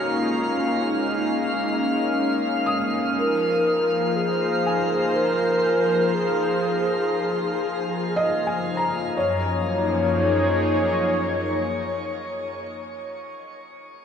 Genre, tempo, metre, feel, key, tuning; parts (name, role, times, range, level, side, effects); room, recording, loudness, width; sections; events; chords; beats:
ambient; 60 BPM; 3/4; straight; Gb lydian; A4 = 441 Hz
mellow hollow alto flute; melody; 0.0-12.6 s; Eb4 to Db5; -25 LUFS; left 1 dB; diffuse ambient delay
warm analog pad; sustained chords; 0.0-12.9 s; Gb2 to Db5; -24 LUFS; equal; lush chorus
felt-muted upright piano; arpeggios; 0.0-14.0 s; Db5 to Eb6; -30 LUFS; equal; diffuse ambient delay
drifting glass-harmonics texture; texture; 0.0-9.2 s; F5 to F6; -30 LUFS; left 2 dB; chorus, built-in reverb
wet shimmer reverb, RT60 6.7 s; cassette tape; -20 LUFS; side -7 dB against mid
0.0-9.2 A section; 9.2-12.2 B section
0.0 Bbm7; 3.2 Fm7; 9.2 Gbmaj7
| 0.15 1.15 2.15 | 3.15 4.15 5.15 | 6.15 7.15 8.15 | 9.15 10.15 11.15